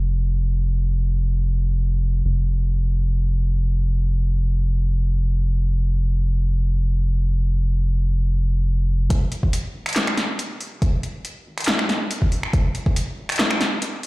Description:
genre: deep dubstep.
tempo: 140 BPM.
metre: 4/4.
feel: half-time.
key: F minor.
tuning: A4 = 441 Hz.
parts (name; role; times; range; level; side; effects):
soft dub sub bass; bass; 0.0-14.1 s; F1 to Ab1; -20 LUFS; equal; high-pass filter.
deep house drum kit; drums; 9.1-14.1 s; finger snaps, handclaps, hi-hat, snare drum; -22 LUFS; equal; overdrive.
electronic kick drum; drums; 9.1-12.9 s; none; -20 LUFS; equal; overdrive.
room: light reverb.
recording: played on a big sound system in a bare room, stone room reverb.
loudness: -19 LUFS.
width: side -21 dB against mid.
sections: 0.0-9.1 A section; 9.1-14.1 B section.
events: build-up 9.1-14.1.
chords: none.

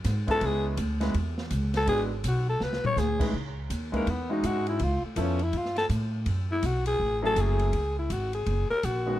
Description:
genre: jazz, small-group swing and bop.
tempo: 164 BPM.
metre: 4/4.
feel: swing 63% on 8ths.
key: C# minor from 3.3 s.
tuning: A4 = 440 Hz.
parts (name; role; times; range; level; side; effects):
upright bass; bass; 0.0-9.2 s; F#1 to A2; -28 LUFS; right 1 dB; none.
open jazz drum kit; drums; 0.0-8.9 s; crash cymbal, hi-hat, kick drum, ride cymbal, snare drum, toms; -36 LUFS; left 1 dB; none.
growling alto saxophone; melody; 0.3-9.2 s; A3 to C#5; -28 LUFS; left 1 dB; plate reverb.
warm concert grand piano; accompaniment; 0.3-9.2 s; D#3 to B4; -31 LUFS; equal; none.
room: light reverb.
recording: dark, warm production.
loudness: -25 LUFS.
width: side -14 dB against mid.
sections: 0.0-3.3 A section; 3.3-9.2 B section.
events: drum fill 2.6-3.0.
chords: 0.4 C#m7; 1.9 G#m7b5; 2.6 C#5; 3.3 C#madd9; 4.8 C#7alt; 6.3 F#m9; 7.7 C#5; 8.5 F#.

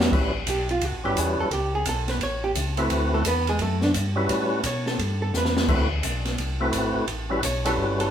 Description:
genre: soul jazz organ trio.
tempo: 172 BPM.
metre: 4/4.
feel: swing 64% on 8ths.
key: A mixolydian.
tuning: A4 = 440 Hz.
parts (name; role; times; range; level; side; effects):
archtop guitar, miked and amplified; accompaniment; 0.0-8.1 s; D3 to C#5; -27 LUFS; right 2 dB; none.
mellow tonewheel organ; bass; 0.0-8.1 s; G1 to B2; -28 LUFS; equal; chorus vibrato, slow rotary speaker.
open jazz drum kit; drums; 0.0-8.1 s; crash cymbal, hi-hat, kick drum, ride cymbal, snare drum; -27 LUFS; equal; none.
percussive tonewheel organ; melody; 0.1-8.1 s; G3 to B4; -25 LUFS; equal; slow rotary speaker.
room: moderate studio reverb, RT60 0.6 s.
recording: band playing live in one room.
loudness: -22 LUFS.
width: side -9 dB against mid.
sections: 0.1-8.1 A section.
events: hollow-body jazz guitar solo 0.1-8.1; drum fill 5.3-5.7.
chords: 0.1 A13; 2.9 D13; 4.3 A13; 5.7 D13; 7.1 A13.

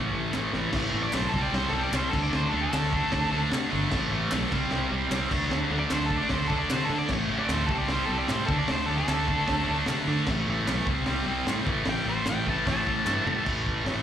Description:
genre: garage rock duo or trio.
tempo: 151 BPM.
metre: 4/4.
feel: straight.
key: A minor.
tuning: A4 = 440 Hz.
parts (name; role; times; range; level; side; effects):
thick fuzz guitar; riff; 0.0-14.0 s; A2 to D4; -27 LUFS; equal; distortion, slapback echo.
fuzz fingered electric bass; bass; 0.0-14.0 s; G1 to D3; -32 LUFS; equal; overdrive.
crunchy breakbeat drum kit; drums; 0.3-14.0 s; crash cymbal, hi-hat, kick drum, snare drum, toms; -32 LUFS; equal; none.
group handclap; percussion; 0.3-13.2 s; none; -38 LUFS; equal; none.
octave-fuzz lead guitar; melody; 1.0-3.4, 5.8-13.5 s; A4 to A5; -31 LUFS; equal; distortion, slapback echo.
room: studio reverb.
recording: live gig heard through the venue's PA, club reverb.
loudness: -24 LUFS.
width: side -10 dB against mid.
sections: 0.7-13.5 A section.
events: drum fill 0.0-0.7, 13.1-13.5.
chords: 0.0 A5; 1.3 C5; 2.1 D5; 3.9 A5; 4.5 C5; 5.3 D5; 7.1 A5; 7.7 C5; 8.5 D5; 10.3 A5; 10.9 C5; 11.7 A5.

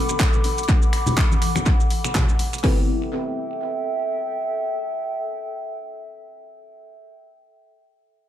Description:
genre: deep house.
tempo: 123 BPM.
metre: 4/4.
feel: swing 57% on 16ths.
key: A dorian.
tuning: A4 = 440 Hz.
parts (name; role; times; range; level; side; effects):
warbly tape-like pad; sustained chords; 0.0-6.9 s; A4 to D6; -27 LUFS; equal; chorus, built-in reverb, vintage 12-bit sampler grit, sidechain pumping.
deep mellow chord stab; stabs; 0.0-7.0 s; B3 to B4; -29 LUFS; left 1 dB; chorus, phaser, sidechain pumping, tape echo.
deep house drum kit; drums; 0.1-2.7 s; finger snaps, handclaps, hi-hat; -28 LUFS; equal; tape echo.
maracas; percussion; 0.1-2.6 s; none; -33 LUFS; right 5 dB; none.
punchy analog drum machine; drums; 0.2-2.8 s; hi-hat, kick drum; -19 LUFS; equal; overdrive.
congas; percussion; 1.1-2.3 s; none; -28 LUFS; left 2 dB; tape echo.
room: light reverb, digital ambience.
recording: echo-heavy mix.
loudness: -19 LUFS.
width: side -11 dB against mid.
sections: 0.0-2.6 A section; 2.6-6.5 B section.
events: filter sweep on synth stab 0.0-2.6.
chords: 0.0 Bm7; 2.6 Am7.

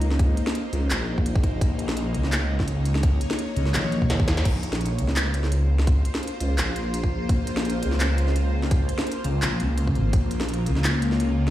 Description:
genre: half-time drum and bass.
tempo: 169 BPM.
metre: 4/4.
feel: swing 55% on 16ths, half-time.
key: Bb minor.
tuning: A4 = 440 Hz.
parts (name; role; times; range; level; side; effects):
bowed-like drone; sustained chords; 0.0-11.5 s; Bb3 to Db5; -30 LUFS; left 2 dB; built-in reverb, phaser, sidechain pumping.
phased detuned saw bass; bass; 0.0-11.5 s; Ab1 to Eb2; -23 LUFS; equal; phaser.
industrial drum kit; drums; 0.0-11.5 s; crash cymbal, handclaps, hi-hat, snare drum, toms; -28 LUFS; equal; none.
electronic kick drum; drums; 0.2-10.2 s; none; -22 LUFS; equal; overdrive.
room: light reverb.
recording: played on a big sound system in a bare room, stone room reverb.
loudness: -21 LUFS.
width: side -14 dB against mid.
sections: 0.0-4.5 A section; 4.5-11.5 A section.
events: drop 0.0-4.5, 4.5-11.5; drum fill 3.7-4.5; band accent 4.4.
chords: 0.0 Bbmadd9.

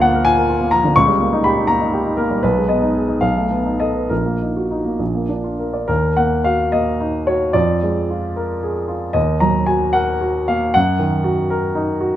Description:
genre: classical, romantic character piece for solo piano.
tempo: 65-86 BPM (dotted quarters).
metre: 6/8.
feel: rubato.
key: Eb minor.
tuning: A4 = 440 Hz.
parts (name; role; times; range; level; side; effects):
warm grand piano; solo; 0.0-12.2 s; Bb1 to Db6; -15 LUFS; equal; none.
room: moderate recital hall reverb, RT60 1.6 s.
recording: close, detailed microphones.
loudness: -15 LUFS.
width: side -12 dB against mid.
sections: 0.0-5.9 A section; 5.9-12.2 B section.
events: none.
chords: 0.0 Bb/D; 1.0 Eb7/Db; 2.4 Abm/Cb; 3.2 B7; 4.1 Ebm/Bb; 5.0 Bb; 5.9 Ebm; 7.5 Bb7/F; 9.2 Ebm; 10.7 Ebm/Gb.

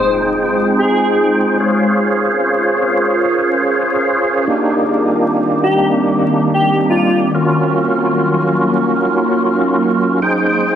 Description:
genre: drum and bass.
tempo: free time.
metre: none.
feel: none.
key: F minor.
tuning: A4 = 439 Hz.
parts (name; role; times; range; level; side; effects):
airy dreamy lead; melody; 0.0-1.3, 5.6-7.2 s; F4 to C5; -19 LUFS; left 1 dB; chorus, cassette tape, dub echo.
ethereal airy pad; sustained chords; 0.0-10.8 s; Eb3 to Bb4; -17 LUFS; left 1 dB; ensemble chorus, built-in reverb, phaser.
tonewheel organ; stabs; 0.0-10.8 s; Bb3 to G5; -14 LUFS; right 1 dB; overdrive, chorus vibrato, slow rotary speaker, low-pass filter, dub echo.
room: moderate digital room reverb, RT60 1.1 s, small room reverb.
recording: heavily compressed radio sound, vinyl crackle.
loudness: -12 LUFS.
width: side -9 dB against mid.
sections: 0.0-10.8 A section.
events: none.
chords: 0.0 Fm7; 1.6 Bbm7; 4.5 Cm7; 7.3 Ebm7; 10.2 Fm7.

